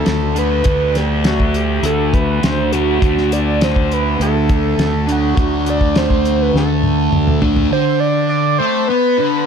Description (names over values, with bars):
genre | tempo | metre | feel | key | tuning
psychedelic rock | 102 BPM | 4/4 | straight | D mixolydian | A4 = 441 Hz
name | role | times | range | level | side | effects
overdriven synth lead | melody | 0.0-9.5 s | F#4 to D5 | -19 LUFS | right 3 dB | phaser, slapback echo
thick fuzz guitar | riff | 0.0-9.5 s | D3 to D4 | -18 LUFS | left 1 dB | distortion, phaser
fuzz fingered electric bass | bass | 0.0-7.7 s | D2 | -19 LUFS | equal | overdrive
cloth-damped thuddy drum kit | drums | 0.1-7.7 s | hi-hat, kick drum, snare drum, toms | -18 LUFS | equal | none
room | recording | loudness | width
light reverb, small room ambience | none | -13 LUFS | side -7 dB against mid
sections
0.0-7.7 A section; 7.7-9.5 B section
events
drum fill 6.5-7.7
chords
0.0 D; 7.7 D5